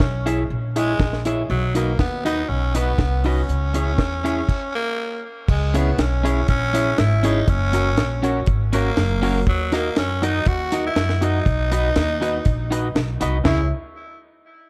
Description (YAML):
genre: ska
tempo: 120 BPM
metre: 4/4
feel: straight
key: C# dorian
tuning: A4 = 440 Hz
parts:
  - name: growling tenor saxophone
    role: melody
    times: 0.0-13.7 s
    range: F#3 to F#4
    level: -27 LUFS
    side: equal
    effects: tape echo
  - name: electric guitar at the edge of break-up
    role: accompaniment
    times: 0.0-13.6 s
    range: C#4 to E5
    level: -29 LUFS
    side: equal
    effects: none
  - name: dark upright piano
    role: stabs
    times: 0.0-13.6 s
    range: D#4 to D#5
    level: -32 LUFS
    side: equal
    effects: none
  - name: upright bass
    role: bass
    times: 0.0-13.7 s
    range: F#1 to F#2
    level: -24 LUFS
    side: equal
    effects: none
  - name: deep reggae drum kit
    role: drums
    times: 0.0-13.6 s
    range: crash cymbal, hi-hat, kick drum, snare drum, toms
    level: -24 LUFS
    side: equal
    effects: none
room: light reverb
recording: dark, warm production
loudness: -21 LUFS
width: mono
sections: 0.0-5.5 A section; 5.5-13.4 B section; 13.4-14.7 C section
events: stop 4.5-5.5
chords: 0.0 C#m; 1.5 B; 3.5 C#m; 7.5 F#; 9.5 D#m; 11.5 B; 13.4 C#m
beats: 0.00 0.50 1.00 | 1.50 1.99 2.49 2.99 | 3.49 3.98 4.48 4.98 | 5.48 5.98 6.48 6.98 | 7.47 7.97 8.47 8.97 | 9.47 9.97 10.46 10.96 | 11.46 11.96 12.45 12.95 | 13.45